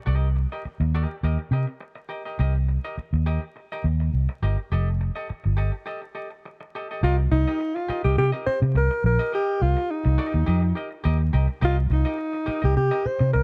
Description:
funk; 104 BPM; 4/4; straight; C dorian; A4 = 445 Hz
semi-hollow electric guitar; accompaniment; 0.1-13.4 s; G4 to Eb5; -37 LUFS; equal
vintage muted fingered electric bass; bass; 0.1-13.4 s; F1 to C3; -23 LUFS; equal
warm alto saxophone; melody; 7.0-13.4 s; Eb4 to C5; -27 LUFS; equal
small room ambience; dark, warm production, vinyl crackle; -24 LUFS; mono
0.0-7.0 A section; 7.0-13.4 B section
break 5.9-7.0
0.0 Cm7; 4.7 F9; 7.0 Cm7

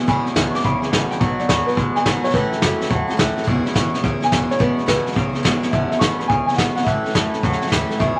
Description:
rockabilly; 212 BPM; 4/4; swing 65% on 8ths; E major; A4 = 435 Hz
dark upright piano; melody; 0.0-8.2 s; F#4 to D6; -25 LUFS; equal
picked steel-string acoustic guitar; accompaniment; 0.0-8.2 s; A2 to A4; -30 LUFS; equal
twangy electric guitar; riff; 0.0-8.2 s; E2 to G#3; -25 LUFS; equal
upright bass; bass; 0.1-8.2 s; E1 to F#2; -33 LUFS; equal
vintage brush drum kit; drums; 0.1-8.1 s; hi-hat, kick drum, snare drum; -23 LUFS; equal
moderate studio reverb, RT60 0.8 s; -19 LUFS; mono
0.0-5.7 A section; 5.7-8.2 B section
upright piano solo 0.0-5.7; drum fill 5.6
0.0 E6; 1.2 B6; 2.3 A6; 3.5 E6; 6.9 A6

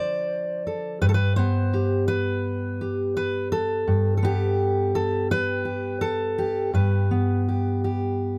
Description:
folk, solo fingerstyle acoustic guitar; 84 BPM; 4/4; rubato; A4 = 442 Hz
fingerpicked steel-string acoustic guitar; solo; 0.0-8.4 s; G2 to D5; -24 LUFS; equal
little or no reverb; close, detailed microphones; -24 LUFS; mono
0.0-8.4 A section
0.0 Dm7; 1.0 G

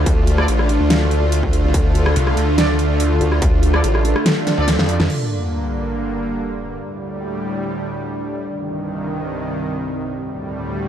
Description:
heavy wobble dubstep; 143 BPM; 4/4; half-time; A4 = 440 Hz
supersaw pad; sustained chords; 0.0-10.9 s; C2 to F4; -24 LUFS; right 1 dB; sidechain pumping
formant-sweep wobble bass; bass; 0.0-5.1 s; A1 to F2; -17 LUFS; equal; chorus, overdrive
deep dark ambient pad; texture; 0.0-10.9 s; C4 to A5; -25 LUFS; equal; chorus, built-in reverb, sidechain pumping
dubstep drum kit; drums; 0.1-5.2 s; crash cymbal, hi-hat, rim click, snare drum; -20 LUFS; equal; overdrive
electronic kick drum; drums; 0.1-3.5 s; -18 LUFS; equal; distortion
warm brass ensemble; stabs; 0.4-4.7 s; D4 to D5; -26 LUFS; right 2 dB; digital delay
snarling distorted saw bass; bass; 2.2-5.0 s; C2 to F2; -18 LUFS; equal; distortion, overdrive
sub drop; sound effects; 5.1-6.8 s; -26 LUFS; equal
light reverb; dark, warm production; -16 LUFS; side -10 dB against mid
0.0-5.1 A section; 5.1-10.9 B section
drop 0.0-5.1; drum fill 4.5-5.1; kick drops out 4.7-5.1; impact 5.1-6.8
0.0 Dm; 5.1 Gm; 6.8 Dsus4; 8.5 Cm; 10.1 Dsus4

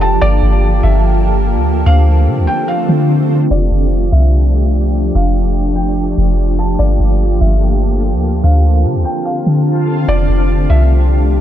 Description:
hip hop; 146 BPM; 4/4; half-time; F major; A4 = 441 Hz
felt-muted upright piano; melody; 0.0-10.9 s; D5 to A5; -22 LUFS; left 1 dB; low-pass filter, tape echo
shimmering ambient pad; sustained chords; 0.0-11.4 s; D3 to A4; -17 LUFS; equal; chorus, built-in reverb
soft 808-style bass; bass; 0.0-11.4 s; F1 to D3; -12 LUFS; equal
vibraphone with hard mallets; texture; 0.0-10.1 s; A3 to F5; -28 LUFS; right 2 dB
light reverb, small room ambience; low-pass filter; -11 LUFS; side -11 dB against mid
0.0-3.5 A section; 3.5-10.1 B section; 10.1-11.4 C section
filter sweep 3.5-10.1
0.2 Gm9; 1.9 Dm7; 3.5 F69; 6.8 Gm9; 8.4 Dm7; 10.1 F69

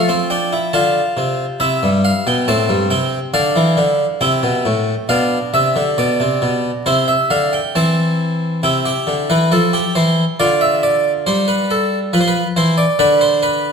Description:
classical, baroque-style 3-part fugue for harpsichord; 69 BPM; 4/4; straight; C major from 8.6 s; A4 = 440 Hz
harpsichord; solo; 0.0-13.7 s; G2 to A5; -14 LUFS; equal
wet recital hall reverb, RT60 1.4 s; -14 LUFS; side -6 dB against mid
0.0-8.6 A section; 8.6-13.7 B section
0.0 F; 1.6 C; 3.3 Dm7; 5.1 Bdim; 6.9 C; 10.4 Dm7; 12.1 Bdim

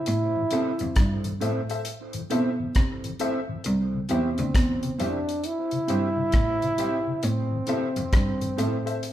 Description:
roots reggae; 67 BPM; 4/4; swing 64% on 16ths; A4 = 440 Hz
breathy trombone; melody; 0.0-9.1 s; C4 to E4; -28 LUFS; equal
rich cello; bass; 0.1-9.0 s; C2 to C3; -28 LUFS; right 1 dB
deep reggae drum kit; drums; 0.1-9.1 s; hi-hat, kick drum, rim click; -25 LUFS; equal
mellow tonewheel organ; accompaniment; 0.4-8.7 s; A2 to E4; -35 LUFS; left 1 dB; chorus vibrato
mellow electric guitar; accompaniment; 0.5-8.8 s; C4 to C5; -34 LUFS; right 3 dB; analog delay
dark upright piano; stabs; 0.5-9.0 s; G4 to E5; -32 LUFS; left 5 dB
moderate large studio reverb, RT60 0.9 s; band playing live in one room; -23 LUFS; side -12 dB against mid
0.0-9.1 A section
0.1 Am; 3.7 C; 7.2 Am

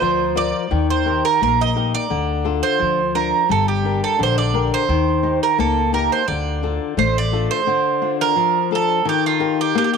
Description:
greek folk, Greek bouzouki band; 86 BPM; 2/4; straight; D phrygian; A4 = 442 Hz
Greek bouzouki; melody; 0.0-10.0 s; F4 to Eb5; -19 LUFS; right 8 dB
flamenco guitar; accompaniment; 0.0-10.0 s; D3 to D5; -21 LUFS; left 12 dB
upright bass; bass; 0.0-7.5 s; G1 to Eb2; -23 LUFS; equal
wet spring reverb, RT60 2.5 s; 1960s-style stereo with parts hard left and right; -16 LUFS; side -6 dB against mid
0.0-7.7 A section; 7.7-10.0 A section
0.0 Bb; 0.7 Eb; 2.1 Dm; 3.5 Gm; 4.9 Eb; 6.3 Dm; 9.1 Eb

